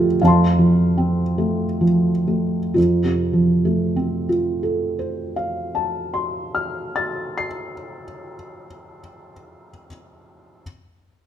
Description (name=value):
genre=neoclassical minimalist piano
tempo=61-82 BPM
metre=3/4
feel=rubato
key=F major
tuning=A4 = 438 Hz
part: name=felt-muted upright piano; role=solo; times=0.0-10.6 s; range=F2 to C7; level=-18 LUFS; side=right 1 dB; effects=none
room=wet recital hall reverb, RT60 1.6 s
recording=minimal, uncompressed stereo recording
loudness=-18 LUFS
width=side -10 dB against mid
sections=0.0-2.8 A section; 2.8-8.4 B section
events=slowing down 0.0-2.8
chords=0.0 F